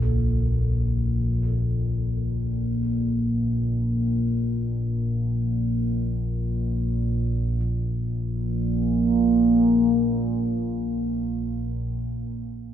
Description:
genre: dark ambient drone.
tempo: free time.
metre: none.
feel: none.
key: Bb harmonic minor.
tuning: A4 = 440 Hz.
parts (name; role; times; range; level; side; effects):
gamelan-type bossed gongs; arpeggios; 0.0-11.9 s; Db2 to A4; -38 LUFS; left 1 dB; diffuse ambient delay.
analog drone; drone; 0.0-11.9 s; Bb1 to Bb2; -22 LUFS; equal; chorus.
room: wet huge ambient reverb, RT60 7.7 s.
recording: none.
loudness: -22 LUFS.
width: side -10 dB against mid.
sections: 0.0-7.6 A section; 7.6-11.4 B section.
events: fade-out on kettle gongs 0.0-7.6.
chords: 0.0 Bbmmaj7; 7.6 Bb5.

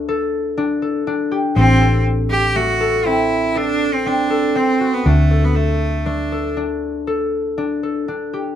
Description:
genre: contemporary instrumental, chamber music in an uneven meter.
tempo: 120 BPM.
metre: 7/4.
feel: straight.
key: unclear.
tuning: A4 = 441 Hz.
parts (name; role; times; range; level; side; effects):
concert harp; arpeggios; 0.0-8.6 s; A3 to A4; -20 LUFS; left 2 dB; none.
hollow-body short-scale fingered electric bass; bass; 0.0-8.5 s; A1 to D2; -18 LUFS; equal; none.
bright cello; melody; 1.6-6.6 s; A3 to G4; -19 LUFS; right 3 dB; none.
room: light reverb.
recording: none.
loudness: -15 LUFS.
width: side -10 dB against mid.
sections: 0.0-8.6 A section.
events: none.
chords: 0.0 D; 1.6 Am; 5.1 D5.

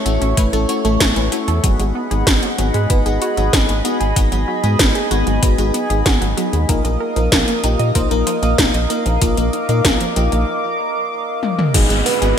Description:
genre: synthwave.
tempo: 95 BPM.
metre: 4/4.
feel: straight.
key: unclear.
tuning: A4 = 439 Hz.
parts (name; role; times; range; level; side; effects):
chorused pulse-width pad; sustained chords; 0.0-12.4 s; G#4 to D#6; -22 LUFS; right 1 dB; sidechain pumping.
FM electric piano with soft pad layer; stabs; 0.0-12.3 s; A3 to B#4; -22 LUFS; left 4 dB; chorus, phaser, digital delay.
analog pluck; arpeggios; 0.1-12.3 s; E#3 to D#5; -25 LUFS; right 3 dB; chorus, phaser, digital delay.
round analog bass; bass; 0.1-12.3 s; G#1 to A#2; -19 LUFS; equal; tube saturation.
80s electronic pad drums; drums; 0.1-12.3 s; crash cymbal, hi-hat, snare drum, toms; -19 LUFS; left 1 dB; gated reverb on snare and toms, overdrive.
electronic kick drum; drums; 0.4-11.9 s; none; -18 LUFS; equal; none.
soft octave-layered synth lead; melody; 11.7-12.4 s; G#4 to B4; -20 LUFS; right 7 dB; chorus, phaser.
downlifter; sound effects; 11.7-12.4 s; none; -21 LUFS; equal; none.
room: moderate lush hall reverb, RT60 2.3 s.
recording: bright 1980s-style digital production.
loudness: -14 LUFS.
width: side -8 dB against mid.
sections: 0.0-11.7 A section.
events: break 10.5-11.7; drum fill 11.4-11.7.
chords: 0.0 A; 1.6 G#m7; 6.7 D#sus2/A#; 11.7 G#m7.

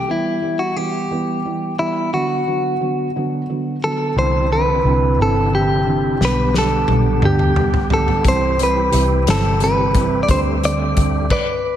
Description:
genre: six-eight pop ballad.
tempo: 59 BPM (dotted quarters).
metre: 6/8.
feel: straight.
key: unclear.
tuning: A4 = 440 Hz.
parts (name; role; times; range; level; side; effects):
direct-recorded clean electric guitar; melody; 0.0-11.8 s; E4 to D5; -19 LUFS; equal; slapback echo, tape echo.
felt-muted upright piano; accompaniment; 0.1-11.2 s; D3 to C4; -22 LUFS; right 4 dB; slapback echo.
bright tonewheel organ; sustained chords; 4.2-11.3 s; C3 to G4; -26 LUFS; left 1 dB; chorus vibrato, fast rotary speaker.
vintage muted fingered electric bass; bass; 4.2-11.3 s; G1 to D2; -20 LUFS; left 1 dB; none.
loose indie drum kit; drums; 6.2-11.5 s; crash cymbal, hi-hat, kick drum, snare drum, toms; -20 LUFS; equal; none.
room: moderate lush hall reverb, RT60 1.8 s, studio reverb.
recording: big arena sound.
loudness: -15 LUFS.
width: side -10 dB against mid.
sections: 0.0-4.2 A section; 4.2-11.8 B section.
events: drum fill 6.2-8.2.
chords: 0.1 Em; 2.1 D6; 4.2 Cadd9; 6.2 G/B; 8.2 C; 10.3 D7sus4.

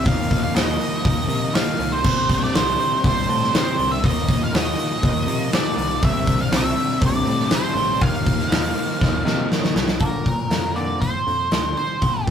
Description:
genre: quiet-loud alternative rock.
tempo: 121 BPM.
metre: 4/4.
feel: straight.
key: unclear.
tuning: A4 = 440 Hz.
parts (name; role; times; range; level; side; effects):
octave-fuzz lead guitar; melody; 0.0-12.2 s; Bb4 to F5; -24 LUFS; right 2 dB; distortion.
ensemble organ-string; sustained chords; 0.0-10.0 s; D4 to G5; -37 LUFS; equal; none.
crunchy overdriven guitar; riff; 0.0-10.0 s; C3 to Eb4; -30 LUFS; left 4 dB; none.
fuzz guitar; riff; 0.0-10.0 s; C3 to Eb4; -30 LUFS; equal; distortion.
thick fuzz guitar; riff; 0.0-10.0 s; C3 to Eb4; -30 LUFS; right 6 dB; none.
picked electric bass; bass; 0.0-12.3 s; A1 to C3; -28 LUFS; equal; none.
big rock drum kit; drums; 0.1-12.3 s; crash cymbal, hi-hat, kick drum, snare drum; -20 LUFS; left 1 dB; none.
twangy electric guitar; arpeggios; 10.0-12.3 s; Bb2 to Bb3; -32 LUFS; left 2 dB; none.
room: moderate small room reverb, RT60 0.5 s.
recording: rough rehearsal-room recording, warm saturation.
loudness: -18 LUFS.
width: side -8 dB against mid.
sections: 0.0-10.0 A section; 10.0-12.3 B section.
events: drum fill 9.0-10.0.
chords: 0.1 Ebsus2; 2.0 Csus2; 4.0 Ebsus2; 6.0 Csus2; 8.0 Ebsus2; 10.0 Bbadd9.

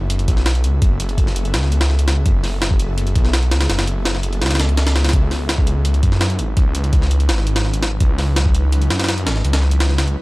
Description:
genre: drum and bass, jungle.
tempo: 167 BPM.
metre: 4/4.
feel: straight.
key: F# minor.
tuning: A4 = 440 Hz.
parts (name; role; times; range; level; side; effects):
detuned saw bass; bass; 0.0-10.2 s; F#1 to F#2; -17 LUFS; equal; none.
jungle sampler-style drum kit; drums; 0.1-10.2 s; hi-hat, kick drum, snare drum; -18 LUFS; equal; overdrive.
room: digital ambience.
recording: dry, gritty hardware recording.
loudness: -15 LUFS.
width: side -21 dB against mid.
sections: 0.0-10.2 A section.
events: none.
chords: none.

